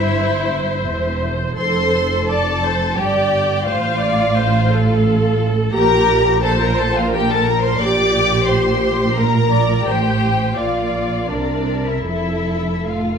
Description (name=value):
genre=classical, slow romantic movement for string orchestra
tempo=75-90 BPM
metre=3/4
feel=rubato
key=F major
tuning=A4 = 439 Hz
part: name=rich studio violin section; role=melody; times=0.0-13.2 s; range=D5 to D6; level=-23 LUFS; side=left 6 dB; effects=none
part: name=rich studio violin section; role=second line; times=0.0-13.2 s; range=D4 to D5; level=-22 LUFS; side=left 1 dB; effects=none
part: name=rich studio viola section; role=accompaniment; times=0.0-13.2 s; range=G4 to D5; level=-20 LUFS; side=right 1 dB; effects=none
part: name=rich studio cello section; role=bass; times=0.0-13.2 s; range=E2 to C3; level=-22 LUFS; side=right 2 dB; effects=none
part: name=rich studio double bass section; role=bass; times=0.0-13.2 s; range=E1 to C2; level=-22 LUFS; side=right 3 dB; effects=none
room=moderate recital hall reverb, RT60 1.4 s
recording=none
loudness=-15 LUFS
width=side -6 dB against mid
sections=0.0-13.2 A section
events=none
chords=0.0 C/G; 1.6 F; 3.7 F/A; 5.7 Gm/Bb; 9.9 Am7; 10.6 Bb; 11.3 Csus2; 12.1 F